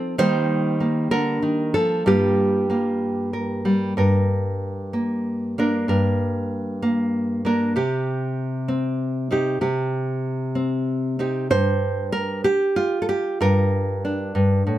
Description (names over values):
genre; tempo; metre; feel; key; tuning
folk, solo fingerstyle acoustic guitar; 64 BPM (dotted quarters); 6/8; rubato; G minor; A4 = 441 Hz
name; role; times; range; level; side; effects
nylon-string guitar; solo; 0.0-14.8 s; G2 to C5; -20 LUFS; equal; none
room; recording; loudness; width
light reverb; none; -20 LUFS; side -13 dB against mid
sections
0.0-4.0 A section; 4.0-11.5 B section; 11.5-14.8 C section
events
none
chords
0.2 Cm7/Eb; 2.1 Gm7; 4.0 Gm; 7.7 Cm; 11.5 Gm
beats
| 0.18 1.11 | 2.05 3.00 | 3.96 4.92 | 5.88 6.82 | 7.75 8.67 | 9.60 10.54 | 11.50 12.46 | 13.42 14.36